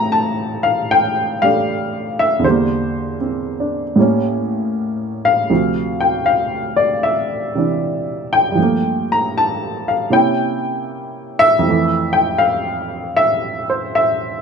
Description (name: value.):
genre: solo jazz.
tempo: 78 BPM.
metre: 4/4.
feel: swing 67% on 8ths.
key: F major.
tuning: A4 = 439 Hz.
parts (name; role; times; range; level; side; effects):
warm upright piano; solo; 0.0-14.4 s; D2 to Bb5; -15 LUFS; equal; none.
room: moderate studio reverb, RT60 0.7 s.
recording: none.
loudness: -15 LUFS.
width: side -6 dB against mid.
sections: 0.0-14.4 A section.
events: none.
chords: 0.0 Am7; 2.4 Em7b5; 4.0 A7b9; 5.5 Dm9; 8.6 Gm9; 10.1 C7b9; 11.6 Fmaj7.